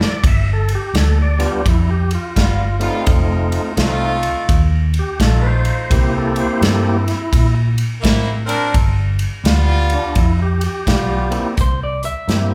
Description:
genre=electric blues shuffle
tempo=85 BPM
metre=4/4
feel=swing 63% on 8ths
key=C mixolydian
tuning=A4 = 438 Hz
part: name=tonewheel organ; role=accompaniment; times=0.0-12.5 s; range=G3 to E5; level=-24 LUFS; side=equal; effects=slow rotary speaker, overdrive
part: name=bright horn section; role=stabs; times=0.0-11.6 s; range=G3 to Bb4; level=-25 LUFS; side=equal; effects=none
part: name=vintage muted fingered electric bass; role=bass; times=0.0-12.5 s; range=F1 to Bb2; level=-20 LUFS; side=equal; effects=none
part: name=natural country drum kit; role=drums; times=0.0-12.5 s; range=hi-hat, kick drum, ride cymbal, snare drum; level=-21 LUFS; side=equal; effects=none
part: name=electric guitar through a small old amp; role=melody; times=11.6-12.5 s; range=C5 to E5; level=-26 LUFS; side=equal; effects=none
room=moderate large studio reverb, RT60 1.1 s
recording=band playing live in one room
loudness=-16 LUFS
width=mono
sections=0.0-11.6 A section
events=drum fill 0.0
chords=0.2 G7; 3.1 F7; 5.9 C7; 8.7 G7; 11.6 C7

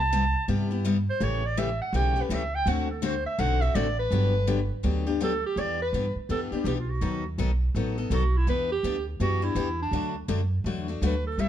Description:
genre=acoustic string swing (jazz manouche)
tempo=165 BPM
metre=4/4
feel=swing 62% on 8ths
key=unclear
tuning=A4 = 445 Hz
part: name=clear clarinet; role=melody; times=0.0-11.5 s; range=D4 to A5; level=-29 LUFS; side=right 2 dB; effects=plate reverb
part: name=upright bass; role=bass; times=0.0-11.5 s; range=G1 to G2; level=-27 LUFS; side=right 1 dB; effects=none
part: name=picked steel-string acoustic guitar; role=accompaniment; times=0.1-11.5 s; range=C3 to A4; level=-30 LUFS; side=left 6 dB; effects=none
room=light reverb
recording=dark, warm production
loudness=-24 LUFS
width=side -10 dB against mid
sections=0.0-5.6 A section; 5.6-11.5 B section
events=clarinet solo 0.0-5.6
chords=0.0 Cmaj7; 1.2 A7; 2.7 D7; 4.1 Gmaj7; 5.6 Em7; 7.0 B7; 8.5 Em7; 9.9 D

